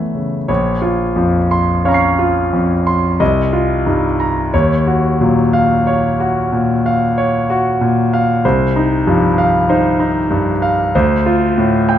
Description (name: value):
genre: classical, impressionist solo piano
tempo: 43-49 BPM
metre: 3/4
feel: rubato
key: Bb minor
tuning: A4 = 440 Hz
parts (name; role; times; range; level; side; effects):
- clear concert grand piano; solo; 0.0-12.0 s; Bb1 to C7; -12 LUFS; equal; none
room: moderate recital hall reverb, RT60 1.4 s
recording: none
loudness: -12 LUFS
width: side -10 dB against mid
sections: 0.5-12.0 A section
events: none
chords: 0.5 Bbmadd9; 3.2 Cm7; 4.5 Ebm9; 8.4 Cmadd11; 10.9 Dm7